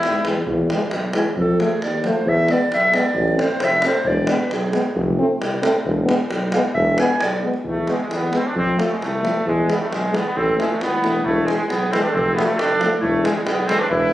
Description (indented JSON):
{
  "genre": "balkan folk, Balkan brass band",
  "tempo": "134 BPM",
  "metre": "2/4",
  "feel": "straight",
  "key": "E phrygian dominant",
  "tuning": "A4 = 445 Hz",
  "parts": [
    { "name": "clear trumpet", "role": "melody", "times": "0.0-0.3, 7.7-14.1 s", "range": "G#3 to E4", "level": "-22 LUFS", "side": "equal", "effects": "none" },
    { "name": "mellow clarinet", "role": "second line", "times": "0.0-7.4, 10.4-14.1 s", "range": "B3 to G#5", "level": "-21 LUFS", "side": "equal", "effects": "none" },
    { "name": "mellow tuba", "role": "bass", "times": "0.0-14.1 s", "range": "E1 to G#2", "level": "-23 LUFS", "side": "equal", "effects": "none" },
    { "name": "davul", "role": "percussion", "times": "0.0-14.0 s", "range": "none", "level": "-25 LUFS", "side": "equal", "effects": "none" },
    { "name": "warm French horn", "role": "accompaniment", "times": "0.2-13.8 s", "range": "G#3 to C4", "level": "-23 LUFS", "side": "left 2 dB", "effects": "none" },
    { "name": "warm euphonium", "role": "accompaniment", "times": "0.3-13.8 s", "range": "E3 to A3", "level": "-26 LUFS", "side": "right 3 dB", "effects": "none" }
  ],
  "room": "moderate studio reverb, RT60 0.5 s",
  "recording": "recorded on a phone in the room, studio reverb, compression",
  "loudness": "-17 LUFS",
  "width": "side -14 dB against mid",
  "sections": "0.5-7.7 A section; 7.7-14.1 B section",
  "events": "clarinet solo 0.5-7.7",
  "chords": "0.5 E; 1.4 F; 2.3 E; 3.2 Am; 4.1 E; 5.0 F; 5.9 E; 8.6 F; 9.5 E; 10.4 A5; 11.2 E; 12.1 F; 13.0 E"
}